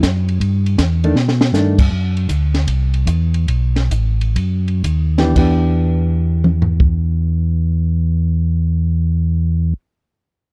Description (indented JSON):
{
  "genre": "soul jazz organ trio",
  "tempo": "111-160 BPM",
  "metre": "4/4",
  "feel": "swing 66% on 8ths",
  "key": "E minor",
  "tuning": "A4 = 439 Hz",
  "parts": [
    { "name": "mellow tonewheel organ", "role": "bass", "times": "0.0-9.7 s", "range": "A1 to B2", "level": "-18 LUFS", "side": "equal", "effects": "overdrive, chorus vibrato, slow rotary speaker" },
    { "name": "compact cocktail drum kit", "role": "drums", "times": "0.0-6.9 s", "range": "crash cymbal, hi-hat, kick drum, ride cymbal, snare drum, toms", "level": "-20 LUFS", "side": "equal", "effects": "none" },
    { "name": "hollow-body jazz guitar", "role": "accompaniment", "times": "1.0-1.8, 5.2-9.8 s", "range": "D#3 to G4", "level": "-22 LUFS", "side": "equal", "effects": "none" }
  ],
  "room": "studio reverb",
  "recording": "dry, close 1970s-style studio recording",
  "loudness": "-16 LUFS",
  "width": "mono",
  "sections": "0.0-1.9 A section; 1.9-5.4 B section; 5.4-9.7 C section",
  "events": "drum fill 1.2-1.5; slowing down 1.9-5.4",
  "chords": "0.4 Em7; 1.2 B7#9; 1.9 Cadd9; 3.5 B7; 5.4 Em7"
}